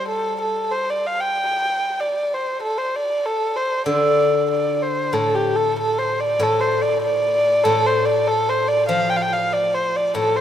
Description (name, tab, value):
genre	chinese traditional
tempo	95 BPM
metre	2/4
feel	rubato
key	D yu mode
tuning	A4 = 440 Hz
part	dark erhu	melody	0.0-10.4 s	G4 to G5	-19 LUFS	equal	none
part	steel-string zither	accompaniment	0.0-0.6, 3.9-10.4 s	A2 to G3	-22 LUFS	left 2 dB	none
room	moderate concert hall reverb, RT60 2.2 s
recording	close, detailed microphones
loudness	-18 LUFS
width	side -10 dB against mid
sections	0.0-5.1 A section; 5.1-10.4 B section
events	none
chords	none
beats	| 0.07 0.71 | 1.35 1.99 | 2.61 3.24 | 3.86 4.49 | 5.14 5.78 | 6.41 7.04 | 7.66 8.28 | 8.90 9.53 | 10.17